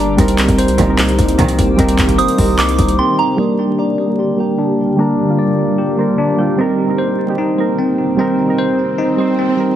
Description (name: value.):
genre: hip hop, trap.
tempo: 150 BPM.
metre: 4/4.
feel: half-time.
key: G minor.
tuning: A4 = 439 Hz.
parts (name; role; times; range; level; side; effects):
soft synth bell; second line; 0.0-3.4 s; Bb5 to Eb6; -20 LUFS; right 4 dB; chorus, digital delay.
soft electric-piano-like synth keys; accompaniment; 0.0-9.8 s; G3 to G5; -17 LUFS; right 3 dB; chorus, low-pass filter.
granular cloud pad; sustained chords; 0.0-9.8 s; D3 to G4; -21 LUFS; equal; built-in reverb, low-pass filter.
bell-like tine electric piano; arpeggios; 0.0-9.8 s; C4 to D5; -18 LUFS; left 3 dB; low-pass filter, digital delay.
hard-hitting 808-style bass; bass; 0.0-3.0 s; G1 to C2; -17 LUFS; equal; none.
booming analog drum machine; drums; 0.2-3.0 s; handclaps, hi-hat, kick drum; -17 LUFS; equal; overdrive.
muted studio string section; stabs; 0.8-1.6 s; C2 to Eb3; -18 LUFS; right 3 dB; none.
swell; sound effects; 8.1-9.8 s; none; -25 LUFS; right 6 dB; none.
room: light reverb, digital ambience.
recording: heavily compressed radio sound, multiband compression, vinyl crackle.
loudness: -12 LUFS.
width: side -11 dB against mid.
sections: 0.0-3.4 A section; 3.4-9.8 B section.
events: drums muted 3.0-3.4; filter sweep 3.4-9.8; synth keys fill 5.8-6.6; swell 8.1-9.8.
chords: 0.2 Cm7; 3.4 Gm; 6.6 Cm7.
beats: | 0.18 0.58 0.98 1.39 | 1.78 2.19 2.58 2.98 | 3.38 3.79 4.18 4.58 | 4.99 5.38 5.79 6.18 | 6.58 6.99 7.38 7.79 | 8.19 8.59 8.98 9.38.